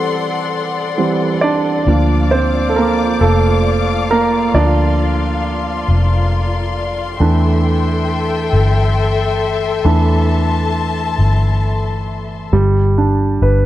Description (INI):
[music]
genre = six-eight pop ballad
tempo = 45 BPM (dotted quarters)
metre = 6/8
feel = straight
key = unclear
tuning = A4 = 440 Hz
[part]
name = warm grand piano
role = accompaniment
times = 0.0-13.7 s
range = E3 to D5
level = -17 LUFS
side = right 3 dB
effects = none
[part]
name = warm studio string section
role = sustained chords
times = 0.0-12.5 s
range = F4 to D6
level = -20 LUFS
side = left 5 dB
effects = none
[part]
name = vintage muted fingered electric bass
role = bass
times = 1.9-13.7 s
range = F1 to E2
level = -16 LUFS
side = left 1 dB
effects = none
[sound]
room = light reverb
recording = none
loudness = -13 LUFS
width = side -14 dB against mid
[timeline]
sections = 0.0-12.5 A section; 12.5-13.7 B section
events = grand piano solo 0.0-12.5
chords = 0.0 D7sus4; 1.9 Bb; 7.2 C6; 12.5 G